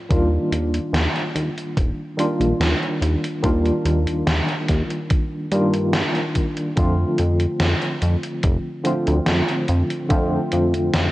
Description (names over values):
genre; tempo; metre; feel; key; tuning
vaporwave; 72 BPM; 4/4; straight; unclear; A4 = 440 Hz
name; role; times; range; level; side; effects
tine electric piano; accompaniment; 0.1-11.1 s; D3 to F4; -22 LUFS; equal; medium tremolo, analog chorus, tape echo
chorused synth bass; bass; 0.1-11.1 s; Eb1 to G2; -20 LUFS; equal; none
electronic kick drum; drums; 0.1-10.3 s; none; -20 LUFS; equal; vintage 12-bit sampler grit
gated 80s digital drum machine; drums; 0.1-11.1 s; hi-hat, snare drum; -24 LUFS; equal; gated reverb, gated reverb snare, vintage 12-bit sampler grit
warm velvety synth lead; melody; 8.9-9.8 s; C4 to F4; -30 LUFS; right 1 dB; none
room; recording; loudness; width
light reverb, digital ambience; cassette tape; -18 LUFS; side -17 dB against mid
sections
0.0-11.1 A section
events
none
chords
0.0 Ebmaj9; 6.8 F6